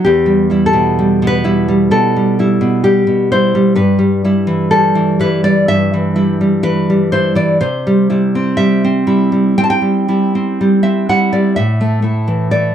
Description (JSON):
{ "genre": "romantic piece for solo classical guitar", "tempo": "63 BPM", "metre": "4/4", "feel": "rubato", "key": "E minor", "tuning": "A4 = 440 Hz", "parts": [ { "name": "nylon-string guitar", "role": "solo", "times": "0.0-12.7 s", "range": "E2 to A5", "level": "-11 LUFS", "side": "equal", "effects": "none" } ], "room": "light reverb", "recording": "dark, warm production", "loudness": "-11 LUFS", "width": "side -9 dB against mid", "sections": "0.0-12.7 A section", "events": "none", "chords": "0.0 Em; 3.8 Em/G; 7.6 C; 11.6 A5", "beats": "| 0.04 0.99 1.93 2.87 | 3.81 4.76 5.71 6.66 | 7.62 8.59 9.57 10.59 | 11.58 12.54" }